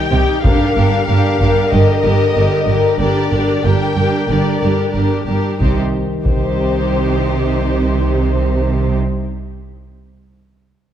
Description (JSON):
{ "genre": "cinematic, epic orchestral film score", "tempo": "93 BPM", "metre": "4/4", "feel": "straight", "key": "C minor", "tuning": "A4 = 440 Hz", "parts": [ { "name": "dark symphonic violin section", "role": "melody", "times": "0.0-9.0 s", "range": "C5 to G5", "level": "-24 LUFS", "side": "left 5 dB", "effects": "none" }, { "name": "rich chamber violin section", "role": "second line", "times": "0.0-8.9 s", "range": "G4 to C5", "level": "-21 LUFS", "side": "left 4 dB", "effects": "none" }, { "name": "warm symphonic viola section", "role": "accompaniment", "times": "0.0-8.9 s", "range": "D3 to Eb4", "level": "-23 LUFS", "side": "right 1 dB", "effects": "none" }, { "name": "dark French horn section", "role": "sustained chords", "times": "0.0-8.8 s", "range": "D3 to Bb4", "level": "-21 LUFS", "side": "left 2 dB", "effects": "none" }, { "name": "rich symphonic cello section", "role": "bass", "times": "0.1-8.9 s", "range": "G2 to C3", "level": "-21 LUFS", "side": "right 3 dB", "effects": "none" }, { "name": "warm symphonic double bass section", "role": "bass", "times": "0.1-8.9 s", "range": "G1 to C2", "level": "-18 LUFS", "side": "right 3 dB", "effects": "none" }, { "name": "solo taiko drums", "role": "drums", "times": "0.4-1.7, 5.6-6.9 s", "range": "none", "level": "-17 LUFS", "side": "equal", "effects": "none" } ], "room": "moderate scoring stage reverb, RT60 1.9 s", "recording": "dark, warm production", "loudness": "-13 LUFS", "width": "side -10 dB against mid", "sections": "0.0-5.6 A section; 5.6-8.2 B section", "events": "none", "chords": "0.4 Gm; 5.6 Cm", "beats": "| 0.44 1.08 1.72 2.36 | 3.00 3.65 4.30 4.95 | 5.61 6.25 6.90 7.54" }